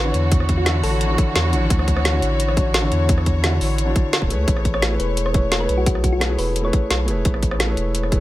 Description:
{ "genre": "liquid drum and bass", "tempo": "173 BPM", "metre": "4/4", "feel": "straight", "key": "D lydian", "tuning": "A4 = 440 Hz", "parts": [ { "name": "thumb-piano-like synth pluck", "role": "melody", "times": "0.0-1.1, 4.7-7.0 s", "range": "F#4 to C#5", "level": "-27 LUFS", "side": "left 1 dB", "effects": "chorus, digital delay" }, { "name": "felt-muted upright piano", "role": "accompaniment", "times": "0.0-8.2 s", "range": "D3 to F#5", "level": "-25 LUFS", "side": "equal", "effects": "dub echo" }, { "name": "muted studio string section", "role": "sustained chords", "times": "0.0-8.2 s", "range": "E3 to C#5", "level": "-28 LUFS", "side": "left 1 dB", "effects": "sidechain pumping" }, { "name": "warm sub bass", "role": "bass", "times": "0.0-8.2 s", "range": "D1 to E2", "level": "-21 LUFS", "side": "equal", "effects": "none" }, { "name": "drum and bass drum kit", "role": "drums", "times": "0.1-8.2 s", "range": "hi-hat, rim click, snare drum", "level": "-23 LUFS", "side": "equal", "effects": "none" }, { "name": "electronic kick drum", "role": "drums", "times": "0.3-8.2 s", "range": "none", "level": "-19 LUFS", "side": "equal", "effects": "overdrive" } ], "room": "light reverb", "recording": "none", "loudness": "-17 LUFS", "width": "side -16 dB against mid", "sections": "0.0-8.2 A section", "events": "none", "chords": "0.0 Dmaj9; 4.5 Amaj7" }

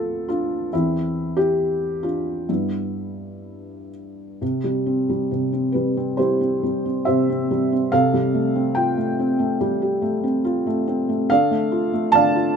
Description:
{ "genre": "classical, lyrical solo piano", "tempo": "60-72 BPM", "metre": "4/4", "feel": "rubato", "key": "C major from 4.4 s", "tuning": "A4 = 440 Hz", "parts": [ { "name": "felt-muted upright piano", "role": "solo", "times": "0.0-12.6 s", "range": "D2 to A5", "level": "-19 LUFS", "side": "equal", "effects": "none" } ], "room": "moderate studio ambience, RT60 0.4 s", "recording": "minimal, uncompressed stereo recording", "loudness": "-19 LUFS", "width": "side -6 dB against mid", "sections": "0.0-4.4 A section; 4.4-12.6 B section", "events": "none", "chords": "0.0 Dm7; 0.7 Dm11/E; 2.5 G; 4.4 C; 7.9 Fadd9/C; 11.3 Dm" }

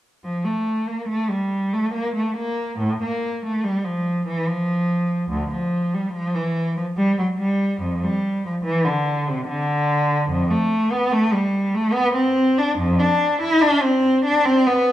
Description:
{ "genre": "classical, baroque-style suite movement for unaccompanied cello", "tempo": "72 BPM", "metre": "3/4", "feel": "rubato", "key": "F major, C major from 10.3 s", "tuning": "A4 = 441 Hz", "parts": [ { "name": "warm cello", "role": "solo", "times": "0.2-14.9 s", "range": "D2 to E4", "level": "-18 LUFS", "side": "equal", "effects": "none" } ], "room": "wet recital hall reverb, RT60 1.3 s", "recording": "minimal, uncompressed stereo recording", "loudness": "-19 LUFS", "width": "side -13 dB against mid", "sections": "0.2-14.9 A section", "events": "none", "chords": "none" }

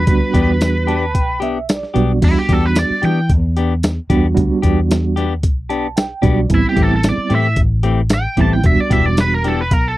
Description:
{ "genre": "straight-eighth soul blues", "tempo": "112 BPM", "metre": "4/4", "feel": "straight", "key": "E minor", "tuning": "A4 = 439 Hz", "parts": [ { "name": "biting lead guitar", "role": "melody", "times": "0.0-3.3, 6.5-10.0 s", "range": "E4 to A5", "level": "-20 LUFS", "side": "right 1 dB", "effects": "overdrive" }, { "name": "mellow reed electric piano", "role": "accompaniment", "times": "0.0-9.5 s", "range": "G3 to A5", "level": "-19 LUFS", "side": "right 4 dB", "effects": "fast tremolo" }, { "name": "vintage muted fingered electric bass", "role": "bass", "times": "0.0-10.0 s", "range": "E1 to E3", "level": "-17 LUFS", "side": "equal", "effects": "none" }, { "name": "dusty soul sampler-style drum kit", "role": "drums", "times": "0.1-9.8 s", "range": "crash cymbal, hi-hat, kick drum, snare drum, tambourine", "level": "-17 LUFS", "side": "equal", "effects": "none" }, { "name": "clean electric guitar", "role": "stabs", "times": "0.3-9.6 s", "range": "E3 to G4", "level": "-20 LUFS", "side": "left 6 dB", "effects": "none" } ], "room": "little or no reverb", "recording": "dry, close 1970s-style studio recording", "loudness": "-13 LUFS", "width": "side -16 dB against mid", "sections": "0.0-2.2 A section; 2.2-10.0 B section", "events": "reed electric piano fill 0.6-2.2, 5.4-6.5; kick and snare drop out 2.0; lead electric guitar solo 2.2-10.0", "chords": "0.0 Em7; 6.5 Am7; 8.6 Em7" }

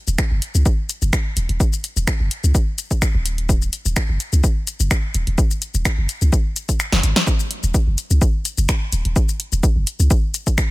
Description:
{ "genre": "minimal techno", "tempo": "127 BPM", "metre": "4/4", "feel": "swing 53% on 16ths", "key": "Eb minor", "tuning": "A4 = 439 Hz", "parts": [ { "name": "punchy sub bass", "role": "bass", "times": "0.1-10.1 s", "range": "Eb1 to Db2", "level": "-17 LUFS", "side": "equal", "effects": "tube saturation, sidechain pumping" }, { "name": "punchy analog drum machine", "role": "drums", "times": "0.1-10.7 s", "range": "finger snaps, hi-hat, shaker, snare drum", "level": "-23 LUFS", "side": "left 2 dB", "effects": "none" }, { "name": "electronic kick drum", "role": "drums", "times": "0.2-10.7 s", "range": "none", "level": "-18 LUFS", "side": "equal", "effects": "none" } ], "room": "little or no reverb", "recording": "none", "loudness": "-17 LUFS", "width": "side -19 dB against mid", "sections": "0.0-7.3 A section; 7.3-10.7 B section", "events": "kick drops out 6.8-7.3; drum fill 6.9-7.3; drop 7.3-10.7", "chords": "none" }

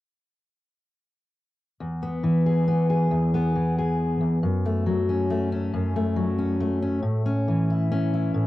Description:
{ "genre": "folk", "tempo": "46 BPM (dotted quarters)", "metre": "6/8", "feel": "straight", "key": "E major", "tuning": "A4 = 440 Hz", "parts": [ { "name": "fingerpicked steel-string acoustic guitar", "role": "accompaniment", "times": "1.8-8.5 s", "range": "E2 to G#4", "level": "-21 LUFS", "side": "left 1 dB", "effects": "cassette tape" } ], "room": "wet booth ambience, RT60 0.2 s", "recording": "home recording on cassette", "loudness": "-21 LUFS", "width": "side -16 dB against mid", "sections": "1.8-8.5 A section", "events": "none", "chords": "1.8 E; 4.4 F#m; 7.0 A" }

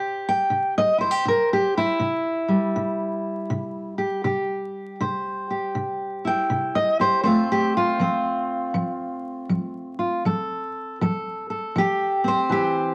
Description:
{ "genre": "acoustic country blues, solo or duo", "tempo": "80 BPM", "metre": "4/4", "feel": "swing 64% on 8ths", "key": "C major", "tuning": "A4 = 440 Hz", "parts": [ { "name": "fingerpicked steel-string acoustic guitar", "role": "solo", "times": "0.0-12.9 s", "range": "C3 to G5", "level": "-24 LUFS", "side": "equal", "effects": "none" } ], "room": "moderate studio reverb, RT60 0.8 s", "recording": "vinyl crackle", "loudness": "-24 LUFS", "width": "mono", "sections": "0.0-12.9 A section", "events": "none", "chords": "0.0 C; 7.3 F" }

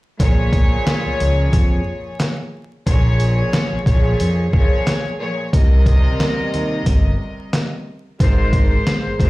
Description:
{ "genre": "hip hop, boom-bap hip-hop", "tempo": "90 BPM", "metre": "4/4", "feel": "swing 56% on 16ths", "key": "Bb dorian", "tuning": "A4 = 440 Hz", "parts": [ { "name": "clear studio string section", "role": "accompaniment", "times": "0.2-9.3 s", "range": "Ab2 to Eb5", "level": "-22 LUFS", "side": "equal", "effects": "cassette tape, high-pass filter, low-pass filter" }, { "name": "fat analog bass", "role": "bass", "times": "0.2-9.3 s", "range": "G1 to F2", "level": "-17 LUFS", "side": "equal", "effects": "none" }, { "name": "trip hop sampler-style drum kit", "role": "drums", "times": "0.2-9.3 s", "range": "handclaps, hi-hat, kick drum, snare drum", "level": "-17 LUFS", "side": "equal", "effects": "none" } ], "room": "little or no reverb", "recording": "played on a big sound system in a bare room, large studio reverb, vinyl crackle", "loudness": "-15 LUFS", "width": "side -20 dB against mid", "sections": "0.2-9.3 A section", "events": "none", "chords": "0.2 Bbm7; 5.5 Cm7; 8.2 Abadd9" }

